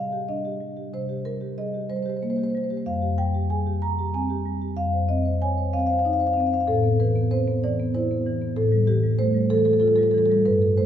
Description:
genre	classical, contemporary piece for solo marimba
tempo	63 BPM (dotted quarters)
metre	6/8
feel	rubato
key	unclear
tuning	A4 = 440 Hz
part	marimba with soft mallets	solo	0.0-10.9 s	F2 to Bb5	-21 LUFS	equal	none
room	wet recital hall reverb, RT60 1.7 s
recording	recorded in a church or concert hall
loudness	-21 LUFS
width	side -10 dB against mid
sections	0.0-10.9 A section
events	none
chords	0.0 Cmadd9; 0.9 Abmaj9/C (rootless); 2.9 Fmadd9; 4.8 Dbmaj9/F (rootless); 6.7 Amadd9; 8.6 Fmaj9/A

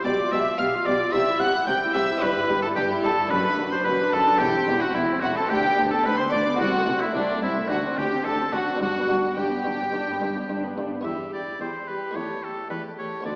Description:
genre	classical, baroque-style concerto movement with solo episodes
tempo	109 BPM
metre	4/4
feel	straight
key	G major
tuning	A4 = 441 Hz
part	bright oboe	melody	0.0-13.4 s	D4 to G5	-27 LUFS	equal	none
part	rich chamber violin section	melody	0.0-13.4 s	D5 to G6	-28 LUFS	equal	none
part	rich chamber violin section	second line	0.0-13.4 s	D4 to G5	-27 LUFS	equal	none
part	buff-stop harpsichord	accompaniment	0.0-13.4 s	C2 to A4	-32 LUFS	equal	none
part	warm chamber viola section	accompaniment	0.0-13.4 s	G3 to G4	-28 LUFS	equal	none
part	warm chamber cello section	bass	0.0-13.4 s	C2 to C3	-32 LUFS	equal	none
part	warm studio double bass section	bass	0.1-10.9 s	E1 to D2	-36 LUFS	equal	none
room	wet concert hall reverb, RT60 2.0 s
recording	heard from further back in the room, small speaker sound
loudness	-21 LUFS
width	side -33 dB against mid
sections	0.0-11.1 A section; 11.1-13.4 B section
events	none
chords	0.1 G7/B; 1.1 C; 2.2 Em/G; 3.3 D/F#; 4.4 C/E; 5.5 Bm/D; 6.6 Am/C; 7.7 D5; 8.8 G; 11.1 Em; 12.2 A5/E

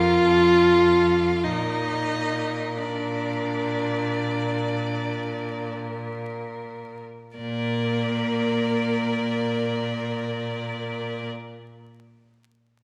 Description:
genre	classical, slow romantic movement for string quartet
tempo	free time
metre	none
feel	none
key	Bb major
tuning	A4 = 440 Hz
part	rich violin	melody	0.0-11.3 s	A4 to D5	-34 LUFS	equal	none
part	clear violin	second line	0.0-11.3 s	Bb4 to F5	-34 LUFS	equal	none
part	rich viola	accompaniment	0.0-11.3 s	Bb3 to F4	-26 LUFS	equal	none
part	rich cello	bass	0.0-11.3 s	F2 to Bb2	-32 LUFS	equal	none
room	wet recital hall reverb, RT60 1.7 s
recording	recorded in a church or concert hall, vinyl crackle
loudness	-24 LUFS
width	mono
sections	0.0-7.4 A section; 7.4-12.8 B section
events	slowing down 0.0-7.4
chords	0.2 F; 1.4 Bb

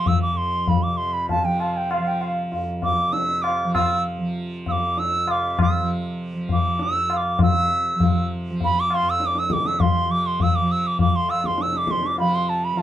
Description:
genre	indian classical, Hindustani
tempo	99 BPM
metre	4/4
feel	straight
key	F raga yaman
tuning	A4 = 439 Hz
part	bright reedy bansuri	melody	0.0-12.8 s	F5 to E6	-22 LUFS	right 1 dB	none
part	tanpura	drone	0.0-12.8 s	F2 to F3	-28 LUFS	right 2 dB	none
part	tabla	percussion	0.1-12.8 s	none	-23 LUFS	left 2 dB	none
room	light reverb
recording	dark, warm production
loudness	-19 LUFS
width	side -11 dB against mid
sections	0.0-7.4 A section; 7.4-12.8 B section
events	speeding up 0.0-12.8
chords	none

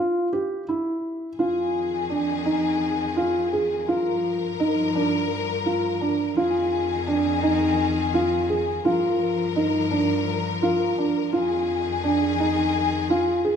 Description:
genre	contemporary instrumental, chamber music in an uneven meter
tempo	169 BPM (eighths)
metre	7/8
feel	straight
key	F dorian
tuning	A4 = 439 Hz
part	felt-muted upright piano	arpeggios	0.0-13.6 s	D4 to Ab4	-22 LUFS	right 1 dB	none
part	clear studio string section	sustained chords	1.4-13.6 s	F2 to Bb4	-26 LUFS	left 5 dB	none
room	wet recital hall reverb, RT60 1.9 s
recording	none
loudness	-21 LUFS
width	side -7 dB against mid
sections	0.0-1.4 A section; 1.4-13.6 B section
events	none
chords	0.0 Dmadd9 (rootless); 1.4 Fm7; 3.9 Gm7; 6.4 Fm7; 8.8 Gm7; 11.3 Fm7

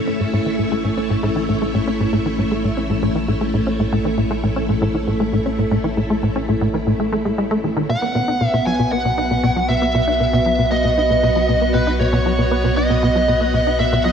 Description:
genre	ambient, sequencer-driven space music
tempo	117 BPM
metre	4/4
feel	straight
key	unclear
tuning	A4 = 440 Hz
part	string machine, full ensemble	sustained chords	0.0-14.1 s	A3 to F#5	-22 LUFS	equal	ensemble chorus
part	warm sub bass	bass	0.0-14.1 s	A1 to B1	-26 LUFS	equal	none
part	tight sequencer bass	riff	0.1-14.1 s	A2 to D#4	-20 LUFS	equal	wide subtle chorus, ping-pong delay
part	bluesy overdriven lead guitar	melody	7.9-14.1 s	B4 to G#5	-19 LUFS	right 1 dB	distortion, ping-pong delay
part	pulsing gated texture	texture	7.9-14.1 s	B3	-29 LUFS	right 4 dB	none
room	moderate plate reverb, RT60 2.8 s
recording	none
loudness	-16 LUFS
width	side -7 dB against mid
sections	0.0-14.1 A section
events	fade-in on sub bass 0.0-14.1; filter sweep on analog synth bass 0.0-14.1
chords	0.0 A; 7.9 B

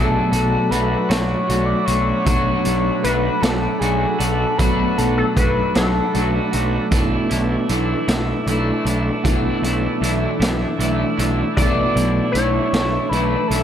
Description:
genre	psychedelic rock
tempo	52 BPM (dotted quarters)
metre	6/8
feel	straight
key	B minor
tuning	A4 = 437 Hz
part	sync lead	melody	0.0-6.6, 11.6-13.6 s	G#4 to D5	-22 LUFS	left 2 dB	chorus, analog delay
part	overdriven combo organ	sustained chords	0.0-13.6 s	A3 to B5	-31 LUFS	right 7 dB	none
part	clean electric guitar	riff	0.0-13.6 s	B2 to F#4	-20 LUFS	equal	harmonic tremolo, double-tracked left and right
part	fuzz picked electric bass	bass	0.0-13.6 s	B1	-22 LUFS	equal	overdrive
part	raw garage drum kit	drums	0.3-13.6 s	hi-hat, kick drum, snare drum	-22 LUFS	equal	none
room	light reverb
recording	none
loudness	-16 LUFS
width	side -9 dB against mid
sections	0.0-13.6 A section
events	none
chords	0.0 Bm7; 6.9 Dsus2/B

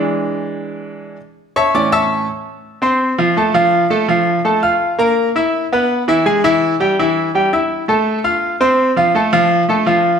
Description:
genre	latin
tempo	166 BPM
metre	4/4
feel	straight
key	unclear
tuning	A4 = 436 Hz
part	bright baby grand piano	solo	0.0-10.2 s	A2 to F6	-13 LUFS	equal	slapback echo
room	wet large studio reverb, RT60 1.3 s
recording	none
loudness	-13 LUFS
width	side -7 dB against mid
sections	0.0-2.6 A section; 2.6-10.2 B section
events	grand piano solo 0.0-2.6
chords	0.0 E7; 1.2 A; 2.6 F; 4.1 Bb5; 5.5 E; 7.0 A5; 8.4 F

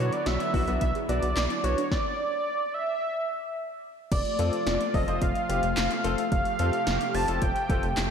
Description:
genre	synth-pop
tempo	109 BPM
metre	4/4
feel	straight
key	F major from 4.1 s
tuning	A4 = 439 Hz
part	wide unison lead	melody	0.0-8.1 s	C#5 to A5	-28 LUFS	right 2 dB	slapback echo, tape echo
part	clear concert grand piano	accompaniment	0.0-7.8 s	B3 to C5	-34 LUFS	left 5 dB	slapback echo
part	lush unison pad	sustained chords	0.0-8.1 s	C3 to G4	-33 LUFS	left 2 dB	chorus, phaser
part	soft round pluck	arpeggios	0.0-1.9 s	D4 to G#4	-38 LUFS	right 5 dB	chorus, slapback echo, tape echo
part	rubbery square bass	bass	0.0-8.1 s	F1 to B2	-29 LUFS	equal	none
part	deep house drum kit	drums	0.1-8.1 s	crash cymbal, handclaps, hi-hat, kick drum, snare drum	-30 LUFS	equal	none
room	wet lush hall reverb, RT60 2.2 s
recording	big arena sound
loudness	-24 LUFS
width	side -7 dB against mid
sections	0.0-4.1 A section; 4.1-8.1 A section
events	stop 1.9-4.1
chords	0.0 Bm; 1.9 N.C.; 4.1 F

